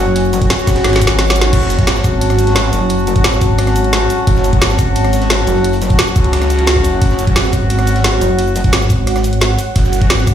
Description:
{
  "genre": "dark technical drum and bass",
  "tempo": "175 BPM",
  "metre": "4/4",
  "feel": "straight",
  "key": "F# minor",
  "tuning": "A4 = 440 Hz",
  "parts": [
    { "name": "dark analog pad", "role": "sustained chords", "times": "0.0-10.3 s", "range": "F#4 to A5", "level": "-20 LUFS", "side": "right 2 dB", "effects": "chorus, sidechain pumping" },
    { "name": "clear brass ensemble", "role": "stabs", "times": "0.0-10.3 s", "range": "F#3 to F#4", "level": "-18 LUFS", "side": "left 2 dB", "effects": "tape echo" },
    { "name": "pulsing pluck wobble bass", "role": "bass", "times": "0.0-10.3 s", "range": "F#1 to G#1", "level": "-15 LUFS", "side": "equal", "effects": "chorus" },
    { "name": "crunchy breakbeat drum kit", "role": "drums", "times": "0.2-10.3 s", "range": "hi-hat, snare drum", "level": "-28 LUFS", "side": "right 1 dB", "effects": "high-pass filter on hats, high-pass filter on snare, high-pass filter on room" },
    { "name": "drum and bass drum kit", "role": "drums", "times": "0.2-10.3 s", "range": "cabasa, crash cymbal, hi-hat, rim click, snare drum", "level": "-18 LUFS", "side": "equal", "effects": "none" },
    { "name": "electronic kick drum", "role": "drums", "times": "0.4-10.3 s", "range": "none", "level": "-15 LUFS", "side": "equal", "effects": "none" },
    { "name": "phased detuned saw bass", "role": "bass", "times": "0.8-1.9, 4.3-7.3, 9.8-10.1 s", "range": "F#1 to C#2", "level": "-15 LUFS", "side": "equal", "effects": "phaser, overdrive, sidechain pumping" }
  ],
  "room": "light reverb, digital ambience",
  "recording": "played on a big sound system in a bare room, large studio reverb",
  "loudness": "-11 LUFS",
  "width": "side -10 dB against mid",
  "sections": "0.0-10.3 A section",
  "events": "drum fill 0.8-1.5",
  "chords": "0.0 F#m",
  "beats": "| 0.16 0.50 0.84 1.19 | 1.53 1.87 2.21 2.56 | 2.90 3.24 3.59 3.93 | 4.27 4.62 4.96 5.30 | 5.64 5.99 6.33 6.67 | 7.01 7.36 7.70 8.04 | 8.39 8.73 9.07 9.41 | 9.76 10.10"
}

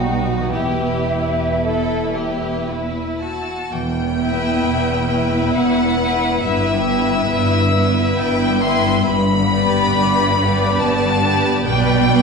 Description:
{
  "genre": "classical",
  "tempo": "54-71 BPM",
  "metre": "3/4",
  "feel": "rubato",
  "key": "E minor",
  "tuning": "A4 = 436 Hz",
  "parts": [
    { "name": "rich chamber violin section", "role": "melody", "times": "0.0-12.2 s", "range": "B4 to C6", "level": "-22 LUFS", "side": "left 4 dB", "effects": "none" },
    { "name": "mellow hollow silver concert flute", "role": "second line", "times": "0.0-2.6 s", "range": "E5 to G5", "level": "-24 LUFS", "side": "equal", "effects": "none" },
    { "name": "rich chamber violin section", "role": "second line", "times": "0.0-12.2 s", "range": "E4 to E5", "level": "-24 LUFS", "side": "left 3 dB", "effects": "none" },
    { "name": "rich symphonic viola section", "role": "accompaniment", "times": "0.0-12.2 s", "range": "B3 to G4", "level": "-23 LUFS", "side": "right 1 dB", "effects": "none" },
    { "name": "mellow French horn section", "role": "sustained chords", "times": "0.0-2.6 s", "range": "E3 to G3", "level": "-28 LUFS", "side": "left 1 dB", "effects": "none" },
    { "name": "concert harp", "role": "arpeggios", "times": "0.0-12.2 s", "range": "G2 to E5", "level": "-24 LUFS", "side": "left 5 dB", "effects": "none" },
    { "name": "clear studio cello section", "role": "bass", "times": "0.0-12.2 s", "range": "E2 to B2", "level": "-22 LUFS", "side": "right 3 dB", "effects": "none" },
    { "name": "clear symphonic double bass section", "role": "bass", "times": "0.0-12.2 s", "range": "E1 to B1", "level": "-24 LUFS", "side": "right 3 dB", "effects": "none" }
  ],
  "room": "wet recital hall reverb, RT60 1.4 s",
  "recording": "recorded in a church or concert hall, nothing above 10.8 kHz",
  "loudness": "-15 LUFS",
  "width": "side -4 dB against mid",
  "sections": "0.0-3.7 A section; 3.7-12.2 B section",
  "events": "none",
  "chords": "0.0 B; 0.5 Em; 6.4 Em/G; 9.1 G; 11.7 G/B",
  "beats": "| 0.54 1.62 2.67 | 3.72 4.64 5.54 | 6.44 7.31 8.19 | 9.07 9.94 10.81 | 11.66"
}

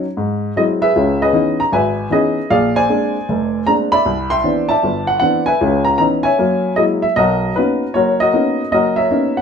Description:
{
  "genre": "solo jazz",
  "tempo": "154 BPM",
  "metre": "4/4",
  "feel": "swing 65% on 8ths",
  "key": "B major",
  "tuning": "A4 = 440 Hz",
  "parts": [
    { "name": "dark baby grand piano", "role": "solo", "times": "0.0-9.4 s", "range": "E#1 to C6", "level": "-13 LUFS", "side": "equal", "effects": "none" }
  ],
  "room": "wet studio reverb, RT60 0.5 s",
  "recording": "band playing live in one room",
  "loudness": "-13 LUFS",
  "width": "side -6 dB against mid",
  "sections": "0.0-9.4 A section",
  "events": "none",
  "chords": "0.2 G#7alt; 0.9 C#m9; 2.5 A#9; 4.1 Cmaj9; 5.6 C#m9; 6.4 F#9; 7.2 Bmaj9",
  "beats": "0.17 0.56 | 0.94 1.33 1.72 2.11 | 2.50 2.89 3.28 3.67 | 4.05 4.44 4.83 5.22 | 5.61 6.00 6.39 6.78 | 7.17 7.55 7.94 8.33 | 8.72 9.11"
}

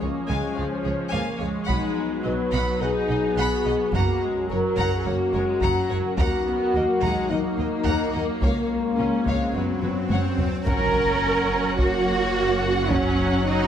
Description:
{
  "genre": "cinematic, hybrid orchestral and electronic film score",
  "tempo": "107 BPM",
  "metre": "4/4",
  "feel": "straight",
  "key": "unclear",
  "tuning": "A4 = 440 Hz",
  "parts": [
    { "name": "rich studio violin section", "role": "second line", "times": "0.0-13.7 s", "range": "E#4 to B5", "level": "-32 LUFS", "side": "left 2 dB", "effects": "none" },
    { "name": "rich symphonic viola section", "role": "accompaniment", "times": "0.0-13.7 s", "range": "E#3 to D#4", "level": "-30 LUFS", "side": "right 2 dB", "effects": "none" },
    { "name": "mellow French horn section", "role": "sustained chords", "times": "0.0-13.1 s", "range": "A#3 to B4", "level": "-26 LUFS", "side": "left 3 dB", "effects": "none" },
    { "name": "phased analog pad", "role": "sustained chords", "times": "0.0-13.7 s", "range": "E#3 to C#5", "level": "-30 LUFS", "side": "left 1 dB", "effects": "phaser, chorus" },
    { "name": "rich symphonic double bass section", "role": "bass", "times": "0.0-13.7 s", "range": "F#1 to D#2", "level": "-29 LUFS", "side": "right 2 dB", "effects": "none" },
    { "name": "warm symphonic cello section", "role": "bass", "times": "0.0-13.7 s", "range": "C#2 to A#4", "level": "-27 LUFS", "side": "right 2 dB", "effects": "none" },
    { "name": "taiko ensemble", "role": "drums", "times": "1.7-13.4 s", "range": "none", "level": "-28 LUFS", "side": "equal", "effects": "none" },
    { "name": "swell and impact", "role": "sound effects", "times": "9.3-12.9 s", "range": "none", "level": "-33 LUFS", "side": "equal", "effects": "none" },
    { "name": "clear symphonic violin section", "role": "melody", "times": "10.7-13.7 s", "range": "F#5", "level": "-34 LUFS", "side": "left 3 dB", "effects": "none" }
  ],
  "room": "moderate scoring stage reverb, RT60 2.1 s",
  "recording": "none",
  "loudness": "-21 LUFS",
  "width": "side -9 dB against mid",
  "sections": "0.0-10.7 A section; 10.7-13.7 B section",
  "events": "swell 9.3-10.7; drum fill 9.8-10.7; impact 10.7-12.9",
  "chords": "0.0 C#; 1.7 B; 3.9 F#; 6.2 D#m; 8.4 C#; 9.5 F#sus4; 10.7 F#",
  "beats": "0.01 0.57 1.13 | 1.70 2.26 2.82 3.38 | 3.94 4.50 5.06 5.62 | 6.18 6.74 7.30 7.86 | 8.42 8.98 9.55 10.11 | 10.67 11.23 11.79 12.35 | 12.91 13.47"
}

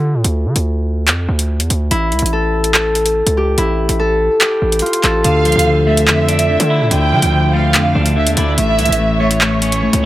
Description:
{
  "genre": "hip hop, drill",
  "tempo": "144 BPM",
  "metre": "4/4",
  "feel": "half-time",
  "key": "D harmonic minor",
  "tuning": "A4 = 440 Hz",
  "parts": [
    { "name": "Celtic harp", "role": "melody", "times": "0.0-7.3 s", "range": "E4 to A4", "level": "-17 LUFS", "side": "left 1 dB", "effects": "tape echo" },
    { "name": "distorted 808-style bass", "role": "bass", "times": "0.0-10.1 s", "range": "A1 to D3", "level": "-17 LUFS", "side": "right 1 dB", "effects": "distortion" },
    { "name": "drill drum kit", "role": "drums", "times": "0.2-10.0 s", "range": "handclaps, hi-hat", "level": "-16 LUFS", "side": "equal", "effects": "none" },
    { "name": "warm studio violin section", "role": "second line", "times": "5.2-10.1 s", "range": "C#5 to G5", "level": "-17 LUFS", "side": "right 3 dB", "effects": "tape echo" },
    { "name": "clean electric guitar", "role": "accompaniment", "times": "5.2-10.1 s", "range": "A2 to E4", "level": "-16 LUFS", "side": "left 2 dB", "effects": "tape echo" }
  ],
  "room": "moderate spring reverb, RT60 2.1 s",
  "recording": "echo-heavy mix",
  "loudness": "-12 LUFS",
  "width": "side -15 dB against mid",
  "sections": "0.0-10.1 A section",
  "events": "break 0.0-1.9",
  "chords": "0.0 Dm; 1.9 A5; 5.2 Dmadd9; 8.6 A",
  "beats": "| 0.24 0.66 1.08 1.49 | 1.91 2.33 2.74 3.16 | 3.58 3.99 4.41 4.83 | 5.24 5.66 6.08 6.49 | 6.91 7.33 7.74 8.16 | 8.58 8.99 9.41 9.83"
}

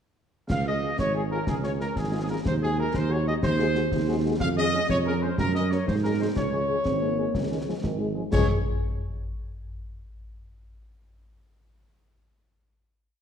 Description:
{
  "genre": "military-style march for wind band",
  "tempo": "123 BPM (dotted quarters)",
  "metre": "6/8",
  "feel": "straight",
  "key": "Db major",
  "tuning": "A4 = 441 Hz",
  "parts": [
    { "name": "clear trumpet section", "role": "melody", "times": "0.5-8.5 s", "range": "Ab4 to F5", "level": "-29 LUFS", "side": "left 1 dB", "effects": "none" },
    { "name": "mellow tuba", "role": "bass", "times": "0.5-8.5 s", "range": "Ab1 to Ab2", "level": "-27 LUFS", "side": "right 3 dB", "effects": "none" },
    { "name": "concert snare drum, clash cymbals and concert bass drum", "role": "drums", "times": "0.5-8.5 s", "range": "none", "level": "-30 LUFS", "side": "left 1 dB", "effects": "none" },
    { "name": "mellow French horn section", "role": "accompaniment", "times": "0.7-8.4 s", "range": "F3 to Bb4", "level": "-33 LUFS", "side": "left 5 dB", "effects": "none" },
    { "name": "mellow euphonium", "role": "second line", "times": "6.9-8.2 s", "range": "Eb3 to C4", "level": "-32 LUFS", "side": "right 3 dB", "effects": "none" }
  ],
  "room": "wet scoring stage reverb, RT60 1.7 s",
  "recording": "dark, warm production",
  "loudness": "-23 LUFS",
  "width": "side -8 dB against mid",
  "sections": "0.5-8.3 A section; 8.3-9.3 final chord",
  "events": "none",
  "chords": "0.5 Db; 2.5 Ab7/Eb; 4.4 Db/F; 5.4 Gb; 5.9 Ab7sus2; 6.4 Db",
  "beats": "| 0.50 0.98 | 1.47 1.96 | 2.45 2.94 | 3.43 3.92 | 4.41 4.89 | 5.38 5.87 | 6.36 6.85 | 7.34 7.83 | 8.32"
}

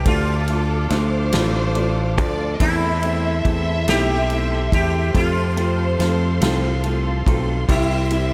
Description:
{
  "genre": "six-eight pop ballad",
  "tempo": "47 BPM (dotted quarters)",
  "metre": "6/8",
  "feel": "straight",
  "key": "unclear",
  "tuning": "A4 = 439 Hz",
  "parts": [
    { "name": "sitar", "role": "melody", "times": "0.0-8.3 s", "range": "E4 to G4", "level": "-28 LUFS", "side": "equal", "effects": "slapback echo, tape echo" },
    { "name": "warm symphonic violin section", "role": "second line", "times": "0.0-8.3 s", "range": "A4 to E5", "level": "-30 LUFS", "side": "equal", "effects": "slapback echo" },
    { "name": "warm studio string section", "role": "sustained chords", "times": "0.0-8.3 s", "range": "G4 to D6", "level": "-34 LUFS", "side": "equal", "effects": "none" },
    { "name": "direct-recorded clean electric guitar", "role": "arpeggios", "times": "0.0-8.3 s", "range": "C3 to A4", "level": "-34 LUFS", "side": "equal", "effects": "phaser, slapback echo, tape echo" },
    { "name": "fingered electric bass", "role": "bass", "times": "0.0-8.3 s", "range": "A1 to F2", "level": "-23 LUFS", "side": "equal", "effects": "none" },
    { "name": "clear concert grand piano", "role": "accompaniment", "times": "0.1-8.3 s", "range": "G3 to F4", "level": "-28 LUFS", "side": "equal", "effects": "slapback echo" },
    { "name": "natural country drum kit", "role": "drums", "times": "0.1-8.3 s", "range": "kick drum, ride cymbal, snare drum", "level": "-27 LUFS", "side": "equal", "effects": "none" }
  ],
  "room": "moderate lush hall reverb, RT60 2.6 s",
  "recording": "big arena sound",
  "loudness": "-20 LUFS",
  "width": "mono",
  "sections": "0.0-8.3 A section",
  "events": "none",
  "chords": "0.1 Dm; 2.6 Am/E; 5.1 F; 7.7 C",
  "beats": "| 0.06 1.33 | 2.60 3.87 | 5.14 6.42 | 7.68"
}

